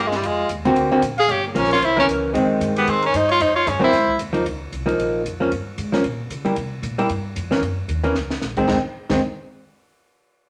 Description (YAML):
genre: jazz, small-group swing and bop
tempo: 227 BPM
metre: 4/4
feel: swing 58% on 8ths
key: F minor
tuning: A4 = 441 Hz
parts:
  - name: edgy tenor saxophone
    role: melody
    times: 0.0-4.2 s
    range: G3 to Ab4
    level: -21 LUFS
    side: equal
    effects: none
  - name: mellow trumpet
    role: second line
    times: 0.0-4.2 s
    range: E4 to F5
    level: -27 LUFS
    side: equal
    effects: none
  - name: upright bass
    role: bass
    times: 0.0-9.2 s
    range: F1 to Db3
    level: -31 LUFS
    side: equal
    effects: none
  - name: compact cocktail drum kit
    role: drums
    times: 0.1-9.2 s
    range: crash cymbal, hi-hat, kick drum, ride cymbal, snare drum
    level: -35 LUFS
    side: equal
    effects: none
  - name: archtop guitar, miked and amplified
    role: accompaniment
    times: 0.7-9.2 s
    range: D3 to Gb4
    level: -22 LUFS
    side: equal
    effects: none
room: wet studio reverb, RT60 0.8 s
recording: none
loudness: -20 LUFS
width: mono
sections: 0.0-4.5 A section; 4.5-8.7 B section; 8.7-9.7 C section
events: drum fill 8.2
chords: 0.2 Fm7; 0.8 Daug7; 1.3 Gm7b5; 1.8 C7b9; 2.3 Fm7; 3.9 Abadd9; 4.5 Db69; 5.5 Gdim; 6.6 C7; 7.6 Gb; 8.7 Fm7